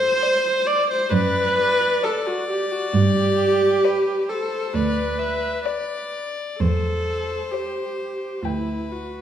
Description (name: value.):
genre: classical, slow romantic movement for string quartet.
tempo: 62-69 BPM.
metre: 4/4.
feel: rubato.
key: G major.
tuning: A4 = 440 Hz.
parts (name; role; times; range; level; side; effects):
rich violin; second line; 0.0-9.2 s; B4 to E5; -28 LUFS; left 5 dB; none.
warm viola; accompaniment; 0.0-9.2 s; E4 to D5; -21 LUFS; right 1 dB; none.
dark cello; bass; 0.0-9.2 s; D2 to G2; -23 LUFS; right 2 dB; none.
dark violin; melody; 0.2-9.2 s; C5 to G5; -32 LUFS; left 10 dB; none.
room: wet recital hall reverb, RT60 1.5 s.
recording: minimal, uncompressed stereo recording.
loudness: -19 LUFS.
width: side -9 dB against mid.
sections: 0.0-9.2 A section.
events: none.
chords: 0.0 D7; 2.9 G; 6.6 C/E; 8.4 G/D.